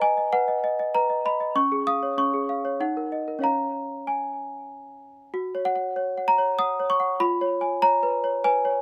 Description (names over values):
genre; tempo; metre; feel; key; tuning
classical, lullaby for celesta; 96 BPM; 3/4; straight; F# major; A4 = 440 Hz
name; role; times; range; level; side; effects
worn celesta; solo; 0.0-8.8 s; C#4 to D#6; -24 LUFS; equal; none
room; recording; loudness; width
little or no reverb; recorded outdoors, with no room sound; -24 LUFS; mono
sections
0.0-5.3 A section; 5.3-8.8 B section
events
none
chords
0.0 Bmaj7; 1.6 C#; 2.8 D#m; 3.4 C#; 5.3 F#5; 7.2 C#7/E#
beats
0.32 0.93 | 1.55 2.17 2.80 | 3.43 4.07 4.70 | 5.33 5.95 6.58 | 7.20 7.83 8.46